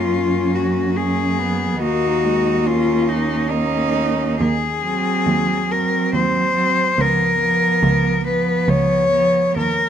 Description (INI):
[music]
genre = classical, lyrical piece for cello ensemble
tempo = 70 BPM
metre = 3/4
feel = rubato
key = unclear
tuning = A4 = 439 Hz
[part]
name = rich cello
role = melody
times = 0.0-9.9 s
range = C#4 to C#5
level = -18 LUFS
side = left 4 dB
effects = none
[part]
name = warm cello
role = second line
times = 0.0-9.6 s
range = A#3 to D#4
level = -26 LUFS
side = right 11 dB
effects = none
[part]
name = warm cello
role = accompaniment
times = 0.0-9.6 s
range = E#3 to C#4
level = -23 LUFS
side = right 1 dB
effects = none
[part]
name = rich cello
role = bass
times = 0.0-9.9 s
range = C#2 to F#2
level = -22 LUFS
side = right 2 dB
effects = none
[sound]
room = light reverb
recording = close, detailed microphones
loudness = -16 LUFS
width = side -9 dB against mid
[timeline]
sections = 0.0-9.9 A section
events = none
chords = 0.0 F#; 1.8 D#m7; 4.4 G#7/D#; 7.0 C#7